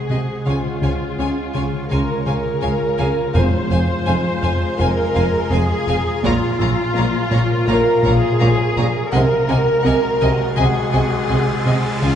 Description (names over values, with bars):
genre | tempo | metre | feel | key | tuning
cinematic | 83 BPM | 4/4 | straight | unclear | A4 = 440 Hz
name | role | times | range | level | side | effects
rich chamber viola section | accompaniment | 0.0-12.2 s | F4 to C5 | -21 LUFS | equal | none
clear French horn section | sustained chords | 0.0-12.2 s | C3 to Gb4 | -26 LUFS | left 3 dB | none
ethereal airy pad | sustained chords | 0.0-12.2 s | Ab4 to Gb5 | -31 LUFS | right 1 dB | ensemble chorus, built-in reverb
Celtic harp | texture | 0.0-9.5 s | Db5 to E6 | -38 LUFS | left 4 dB | none
bright chamber violin section | melody | 0.1-12.1 s | Ab5 to Bb5 | -29 LUFS | left 4 dB | none
rich chamber violin section | second line | 0.1-12.1 s | C5 to Gb5 | -30 LUFS | right 1 dB | none
rubbery square bass | riff | 0.1-12.2 s | F2 to Db4 | -22 LUFS | left 1 dB | none
clear chamber double bass section | bass | 0.1-12.1 s | F1 to Db2 | -23 LUFS | right 1 dB | none
warm chamber cello section | bass | 0.1-12.1 s | F2 to Db3 | -24 LUFS | right 2 dB | none
timpani | percussion | 3.4-4.4 s | F2 | -24 LUFS | left 1 dB | none
rich studio violin section | texture | 3.4-12.2 s | Ab5 to A6 | -35 LUFS | left 3 dB | none
riser | sound effects | 10.3-12.2 s | none | -31 LUFS | equal | none
room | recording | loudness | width
wet scoring stage reverb, RT60 1.8 s | heard from further back in the room, nothing above 10.3 kHz | -15 LUFS | side -9 dB against mid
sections
0.0-12.2 A section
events
riser 10.3-12.2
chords
0.5 Db; 3.4 Fm; 6.2 Bbmadd9; 9.1 Ab7/C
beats
| 0.46 1.18 1.91 2.63 | 3.35 4.08 4.80 5.52 | 6.24 6.97 7.69 8.41 | 9.13 9.86 10.58 11.30 | 12.03